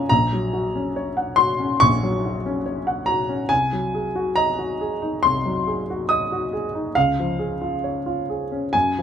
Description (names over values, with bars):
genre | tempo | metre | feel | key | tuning
classical, romantic nocturne for solo piano | 70 BPM | 4/4 | rubato | Db major | A4 = 442 Hz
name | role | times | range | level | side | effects
dark baby grand piano | solo | 0.0-9.0 s | Bb1 to Eb6 | -20 LUFS | left 1 dB | none
room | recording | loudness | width
little or no reverb | close, detailed microphones | -20 LUFS | side -8 dB against mid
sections
0.0-9.0 A section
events
none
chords
0.1 Gb/Bb; 3.5 Ab7/C; 7.0 Db